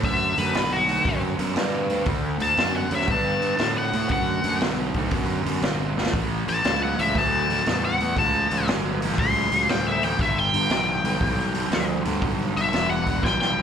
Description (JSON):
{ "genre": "blues rock power trio and southern rock", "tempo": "118 BPM", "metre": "4/4", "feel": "swing 67% on 8ths", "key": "unclear", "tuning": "A4 = 444 Hz", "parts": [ { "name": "octave-fuzz lead guitar", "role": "melody", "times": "0.0-13.6 s", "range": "F#4 to C6", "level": "-24 LUFS", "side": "left 3 dB", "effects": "wah, distortion, slapback echo" }, { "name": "sludgy distorted guitar", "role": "riff", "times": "0.0-13.6 s", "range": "G2 to C4", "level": "-27 LUFS", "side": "right 2 dB", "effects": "overdrive, slapback echo" }, { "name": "fuzz fingered electric bass", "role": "bass", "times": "0.0-13.6 s", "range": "E1 to A2", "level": "-27 LUFS", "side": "equal", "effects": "overdrive" }, { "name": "vintage drum kit", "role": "drums", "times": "0.0-13.6 s", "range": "hi-hat, kick drum, snare drum", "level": "-28 LUFS", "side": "equal", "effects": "none" } ], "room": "light reverb", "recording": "live gig heard through the venue's PA, club reverb", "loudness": "-20 LUFS", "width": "side -8 dB against mid", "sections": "0.0-13.6 A section", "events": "lead electric guitar solo 0.0-13.6; drum fill 5.9, 13.2-13.6", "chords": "0.0 D; 6.1 A; 10.2 G", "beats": "| 0.03 0.54 1.05 1.56 | 2.07 2.58 3.09 3.60 | 4.11 4.61 5.12 5.63 | 6.14 6.64 7.15 7.66 | 8.17 8.68 9.18 9.69 | 10.20 10.70 11.21 11.72 | 12.22 12.73 13.24" }